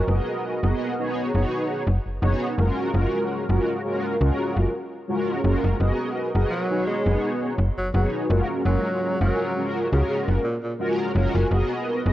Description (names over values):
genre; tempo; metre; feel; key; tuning
vaporwave; 84 BPM; 4/4; swing 55% on 16ths; F# major; A4 = 440 Hz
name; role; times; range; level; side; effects
mellow synth brass; accompaniment; 0.0-12.1 s; G#3 to D#5; -24 LUFS; equal; ensemble chorus, tape echo
slap-like FM bass; bass; 0.1-12.1 s; F#1 to C#2; -21 LUFS; equal; tube saturation
clear tenor saxophone; melody; 6.5-10.7 s; A#2 to G#3; -28 LUFS; equal; tape echo
room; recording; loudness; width
light reverb, studio reverb; worn, warbling old tape, cassette tape, warbly pitch drift; -21 LUFS; side -14 dB against mid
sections
0.0-12.1 A section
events
none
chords
0.1 G#m9/F#; 1.2 C#9sus4/F#; 2.6 F#maj9; 5.8 G#m9/F#; 6.9 C#9sus4/F#; 8.3 F#maj9; 11.5 G#m9/F#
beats
| 0.08 0.80 1.51 2.23 | 2.94 3.65 4.37 5.08 | 5.80 6.51 7.23 7.94 | 8.65 9.37 10.08 10.80 | 11.51